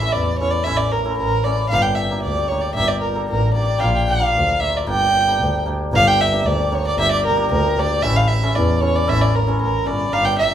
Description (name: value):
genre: klezmer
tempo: 114 BPM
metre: 2/4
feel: straight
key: G dorian sharp4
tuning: A4 = 441 Hz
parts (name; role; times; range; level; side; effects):
- dark violin; melody; 0.0-10.5 s; Bb4 to G5; -19 LUFS; right 1 dB; none
- hammered dulcimer; accompaniment; 0.0-10.3 s; A3 to Bb4; -24 LUFS; left 2 dB; none
- muted double bass; bass; 0.1-10.4 s; G1 to E2; -20 LUFS; equal; none
room: wet studio reverb, RT60 0.8 s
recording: band playing live in one room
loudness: -16 LUFS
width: side -10 dB against mid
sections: 0.0-5.9 A section; 5.9-10.5 A section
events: none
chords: 0.0 A; 1.7 Gm; 3.8 Bb; 4.9 Gm; 8.0 A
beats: 0.13 | 0.66 1.18 | 1.71 2.24 | 2.77 3.29 | 3.82 4.35 | 4.87 5.40 | 5.93 6.45 | 6.98 7.50 | 8.03 8.55 | 9.07 9.60 | 10.12